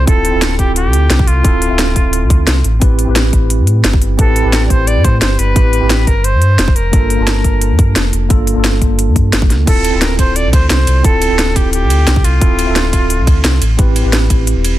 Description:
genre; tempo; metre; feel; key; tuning
liquid drum and bass; 175 BPM; 4/4; straight; D minor; A4 = 440 Hz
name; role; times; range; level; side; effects
bright reedy silver concert flute; melody; 0.0-13.6 s; F4 to D5; -19 LUFS; equal; ping-pong delay
mellow tine electric piano; accompaniment; 0.0-14.8 s; Bb3 to A5; -19 LUFS; right 1 dB; medium stereo tremolo, ping-pong delay
sub bass with octave; bass; 0.0-14.8 s; D1 to A2; -13 LUFS; equal; none
drum and bass drum kit; drums; 0.1-14.7 s; crash cymbal, hi-hat, ride cymbal, snare drum; -17 LUFS; equal; none
electronic kick drum; drums; 0.1-14.4 s; none; -12 LUFS; equal; none
room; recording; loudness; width
little or no reverb; dense, heavily limited modern master; -10 LUFS; side -14 dB against mid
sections
0.0-14.8 A section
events
none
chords
0.0 Dm9; 2.6 Am9; 6.1 Gm9; 9.7 Dm9; 13.6 Am9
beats
| 0.07 0.42 0.76 1.10 | 1.44 1.79 2.13 2.47 | 2.82 3.16 3.50 3.84 | 4.19 4.53 4.87 5.22 | 5.56 5.90 6.24 6.59 | 6.93 7.27 7.62 7.96 | 8.30 8.64 8.99 9.33 | 9.67 10.02 10.36 10.70 | 11.04 11.39 11.73 12.07 | 12.42 12.76 13.10 13.44 | 13.79 14.13 14.47

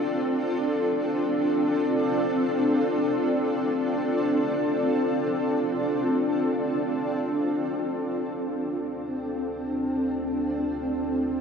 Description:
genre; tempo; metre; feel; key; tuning
ambient; free time; none; none; D minor; A4 = 441 Hz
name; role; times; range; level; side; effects
granular cloud pad; sustained chords; 0.0-11.4 s; C4 to D5; -23 LUFS; equal; built-in reverb, shimmer reverb
warm sub bass; bass; 7.4-11.4 s; D2; -47 LUFS; equal; none
room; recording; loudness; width
wet huge ambient reverb, RT60 8.1 s; worn, warbling old tape, cassette tape, warbly pitch drift; -23 LUFS; side -6 dB against mid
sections
0.0-7.4 A section; 7.4-11.4 B section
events
none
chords
0.0 Dm7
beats
free time

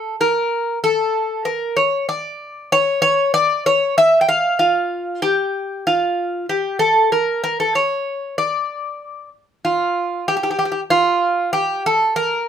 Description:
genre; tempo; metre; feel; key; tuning
greek folk; 95 BPM; 4/4; straight; D harmonic minor; A4 = 441 Hz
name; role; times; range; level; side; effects
Greek bouzouki; solo; 0.0-12.5 s; F4 to G5; -16 LUFS; equal; none
room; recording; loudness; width
moderate small room reverb, RT60 0.5 s; none; -16 LUFS; side -8 dB against mid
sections
0.0-9.6 A section; 9.6-12.5 A section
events
none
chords
none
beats
0.18 0.81 1.44 | 2.07 2.70 3.33 3.96 | 4.59 5.22 5.85 6.49 | 7.12 7.75 8.38 9.01 | 9.64 10.27 10.90 11.53 | 12.16

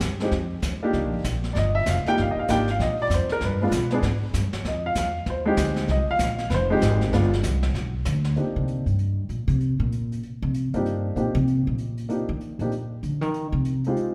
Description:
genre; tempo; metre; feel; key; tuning
jazz piano trio; 194 BPM; 4/4; swing 62% on 8ths; C minor; A4 = 440 Hz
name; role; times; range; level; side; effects
warm upright piano; melody; 0.0-14.1 s; Ab3 to G5; -27 LUFS; equal; none
upright bass; bass; 0.0-13.9 s; F1 to Eb3; -27 LUFS; equal; none
jazz brush drum kit; drums; 0.0-14.1 s; brushed snare drum, hi-hat, kick drum, snare drum; -34 LUFS; equal; none
room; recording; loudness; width
wet recital hall reverb, RT60 1.6 s; recorded in a church or concert hall; -24 LUFS; mono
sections
0.0-8.4 A section; 8.4-14.1 A section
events
upright piano solo 0.0-8.4; upright bass solo 8.4-14.1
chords
0.0 F7(no3); 0.9 Cm7 (rootless); 3.4 G(b9); 4.7 Fm7; 5.9 Bbsus24; 6.5 Fm7; 7.1 G; 8.4 Cm7; 13.3 Fm7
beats
0.01 0.32 0.63 | 0.94 1.25 1.56 1.87 | 2.18 2.49 2.80 3.11 | 3.42 3.73 4.04 4.34 | 4.66 4.96 5.27 5.58 | 5.89 6.20 6.51 6.82 | 7.13 7.44 7.75 8.06 | 8.37 8.68 8.99 9.30 | 9.61 9.93 10.24 10.55 | 10.86 11.17 11.48 11.79 | 12.10 12.41 12.72 13.04 | 13.35 13.66 13.97

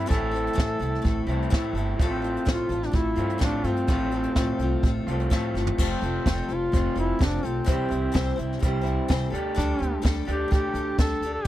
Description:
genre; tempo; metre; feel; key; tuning
folk rock and heartland rock; 127 BPM; 4/4; straight; unclear; A4 = 440 Hz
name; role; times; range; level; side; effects
warm duduk; melody; 0.0-11.5 s; C4 to A4; -29 LUFS; equal; none
picked acoustic archtop guitar; accompaniment; 0.0-11.5 s; A2 to C5; -32 LUFS; left 6 dB; none
electric guitar through a small old amp; riff; 0.0-11.5 s; F2 to G4; -30 LUFS; right 2 dB; none
upright bass; bass; 0.0-11.5 s; F1 to A2; -29 LUFS; equal; none
jazz brush drum kit; drums; 0.1-11.5 s; crash cymbal, hi-hat, kick drum, snare drum, toms; -24 LUFS; equal; none
room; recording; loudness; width
little or no reverb; dry, close 1970s-style studio recording; -22 LUFS; side -14 dB against mid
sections
0.0-5.8 A section; 5.8-11.5 B section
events
drum fill 5.5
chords
0.0 Am; 2.0 F/A; 5.8 F; 7.7 C; 9.3 Dsus4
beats
| 0.10 0.57 1.05 1.52 | 2.00 2.47 2.94 3.42 | 3.89 4.36 4.83 5.31 | 5.78 6.25 6.72 7.20 | 7.67 8.14 8.62 9.09 | 9.56 10.03 10.51 10.98 | 11.45

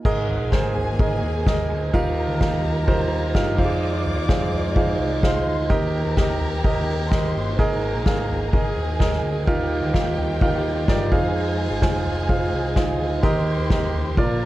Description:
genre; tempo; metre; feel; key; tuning
piano-driven pop; 128 BPM; 4/4; straight; Eb major; A4 = 442 Hz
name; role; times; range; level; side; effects
warm grand piano; accompaniment; 0.0-14.5 s; Ab2 to Ab5; -23 LUFS; right 2 dB; none
warm studio string section; sustained chords; 0.0-14.5 s; D3 to Ab4; -34 LUFS; left 2 dB; none
soft-mallet drum kit; drums; 0.0-14.5 s; crash cymbal, kick drum, ride cymbal, snare drum, toms; -23 LUFS; equal; none
dark symphonic violin section; second line; 0.1-14.5 s; G4 to D6; -32 LUFS; left 2 dB; none
picked electric bass; bass; 0.1-14.5 s; F1 to G2; -26 LUFS; left 1 dB; none
room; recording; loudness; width
light reverb; cassette tape; -19 LUFS; side -16 dB against mid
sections
0.1-14.5 A section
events
none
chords
0.1 Absus2; 1.9 Ebadd9; 3.6 Fm7; 5.7 Eb; 7.6 Absus2; 9.5 Ebadd9; 11.1 Fm7; 13.2 Eb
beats
| 0.05 0.52 0.99 1.47 | 1.94 2.41 2.88 3.35 | 3.82 4.29 4.76 5.24 | 5.71 6.18 6.65 7.12 | 7.59 8.06 8.53 9.00 | 9.47 9.94 10.41 10.88 | 11.35 11.82 12.29 12.76 | 13.23 13.71 14.18

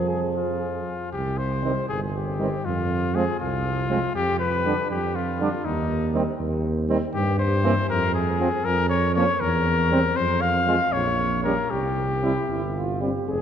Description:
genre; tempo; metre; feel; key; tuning
classical, brass quintet; 79 BPM (dotted quarters); 6/8; straight; C minor; A4 = 445 Hz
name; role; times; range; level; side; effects
warm trumpet; melody; 0.0-13.4 s; Eb4 to F5; -25 LUFS; left 4 dB; none
mellow flugelhorn; second line; 0.0-13.3 s; C4 to Ab4; -32 LUFS; right 4 dB; none
clear trombone; accompaniment; 0.0-13.1 s; D3 to Ab3; -33 LUFS; right 3 dB; none
mellow French horn; accompaniment; 0.0-13.4 s; F3 to Ab4; -32 LUFS; left 1 dB; none
warm tuba; bass; 0.0-13.4 s; F1 to G2; -25 LUFS; right 2 dB; none
room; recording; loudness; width
wet church reverb, RT60 3.0 s; dark, warm production; -21 LUFS; side -8 dB against mid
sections
0.0-1.1 A section; 1.1-13.3 B section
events
none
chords
0.0 Fm; 1.1 C5; 2.7 Fm; 4.2 G7/F; 5.7 N.C.; 7.1 C5/G; 7.9 Fm; 8.6 Bbm/F; 9.4 C7/E (rootless); 10.2 F5; 10.9 Gdim/Bb (rootless); 11.7 C5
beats
0.35 | 1.13 1.89 | 2.65 3.40 | 4.15 4.91 | 5.65 6.39 | 7.14 7.89 | 8.65 9.41 | 10.16 10.92 | 11.71 12.49 | 13.28

